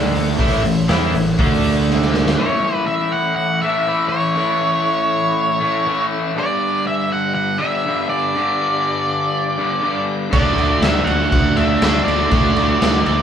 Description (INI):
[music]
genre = classic rock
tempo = 121 BPM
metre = 4/4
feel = straight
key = A mixolydian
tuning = A4 = 440 Hz
[part]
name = tonewheel organ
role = sustained chords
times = 0.0-13.2 s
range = A3 to D5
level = -31 LUFS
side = right 2 dB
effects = slow rotary speaker, overdrive
[part]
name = crunchy overdriven guitar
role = riff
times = 0.0-2.4, 10.3-13.2 s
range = A2 to F#4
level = -21 LUFS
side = right 5 dB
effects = spring reverb
[part]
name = overdriven semi-hollow guitar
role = riff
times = 0.0-13.2 s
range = G2 to E4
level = -20 LUFS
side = left 3 dB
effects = none
[part]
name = fuzz fingered electric bass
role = bass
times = 0.0-2.3, 10.3-13.2 s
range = A1 to E2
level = -22 LUFS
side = right 1 dB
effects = overdrive
[part]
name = raw garage drum kit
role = drums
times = 0.2-2.4, 10.3-13.2 s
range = crash cymbal, hi-hat, kick drum, snare drum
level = -19 LUFS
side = equal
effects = none
[part]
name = octave-fuzz lead guitar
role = melody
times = 2.4-13.2 s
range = C#5 to F#5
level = -20 LUFS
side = right 1 dB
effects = distortion
[sound]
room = wet studio reverb, RT60 1.0 s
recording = band playing live in one room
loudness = -15 LUFS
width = side -8 dB against mid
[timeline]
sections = 0.0-2.4 A section; 2.4-13.2 B section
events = drum fill 1.9-2.4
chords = 0.4 A; 1.4 D5; 2.4 A; 6.4 G; 10.3 Dadd9